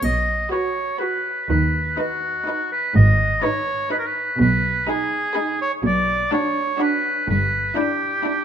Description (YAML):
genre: cinematic, playful, whimsical film cue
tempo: 124 BPM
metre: 3/4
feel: straight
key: B major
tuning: A4 = 438 Hz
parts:
  - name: clear oboe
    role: second line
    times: 0.0-8.4 s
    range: F#4 to D#5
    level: -22 LUFS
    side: right 1 dB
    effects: none
  - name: rich studio cello section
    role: bass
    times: 0.0-7.7 s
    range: G2 to D#3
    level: -22 LUFS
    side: right 1 dB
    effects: none
  - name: rich studio double bass section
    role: bass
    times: 0.0-7.7 s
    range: G1 to D#2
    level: -21 LUFS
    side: right 1 dB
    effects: none
  - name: triangle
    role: percussion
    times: 0.0-1.0 s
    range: none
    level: -38 LUFS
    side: left 2 dB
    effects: none
  - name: rich studio violin section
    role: melody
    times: 0.5-8.4 s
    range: B5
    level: -39 LUFS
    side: left 2 dB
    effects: none
  - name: rich studio violin section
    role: second line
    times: 0.5-8.4 s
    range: E4 to B4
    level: -31 LUFS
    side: left 3 dB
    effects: none
  - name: bright studio viola section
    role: accompaniment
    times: 0.5-8.4 s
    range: D4 to F#4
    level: -26 LUFS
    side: right 2 dB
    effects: none
room: light reverb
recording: none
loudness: -18 LUFS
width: side -8 dB against mid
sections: 0.0-8.4 A section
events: none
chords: 0.0 B; 1.5 B/D#; 2.9 G#m; 4.4 G#m/B; 5.8 Bm; 7.3 Em7/G